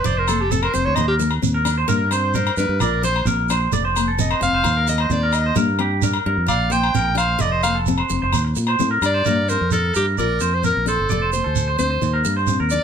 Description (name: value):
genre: highlife guitar band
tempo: 130 BPM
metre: 4/4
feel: straight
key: G minor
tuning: A4 = 440 Hz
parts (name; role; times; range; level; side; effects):
- bright clarinet; melody; 0.0-12.8 s; G4 to G5; -23 LUFS; left 1 dB; none
- picked steel-string acoustic guitar; accompaniment; 0.0-12.8 s; A3 to F4; -26 LUFS; left 8 dB; none
- clean electric guitar; arpeggios; 0.0-12.8 s; G4 to D5; -22 LUFS; right 3 dB; slapback echo
- fingered electric bass; bass; 0.1-12.8 s; F1 to Bb2; -22 LUFS; equal; none
- shekere; percussion; 0.1-12.8 s; none; -26 LUFS; right 7 dB; none
- agogo bells; percussion; 0.3-9.1 s; none; -28 LUFS; left 8 dB; none
room: moderate studio reverb, RT60 0.7 s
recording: none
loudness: -17 LUFS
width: side -7 dB against mid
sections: 0.0-9.2 A section; 9.2-12.8 B section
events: clarinet solo 0.0-9.2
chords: 0.1 F; 1.0 Cm/Eb; 1.9 Gm; 2.8 Bb; 3.7 F; 4.6 Cm/Eb; 5.6 Gm; 6.5 Bb; 7.4 F; 8.3 Cm/Eb; 9.2 Gm; 10.2 Bb; 11.1 F; 12.0 Cm/Eb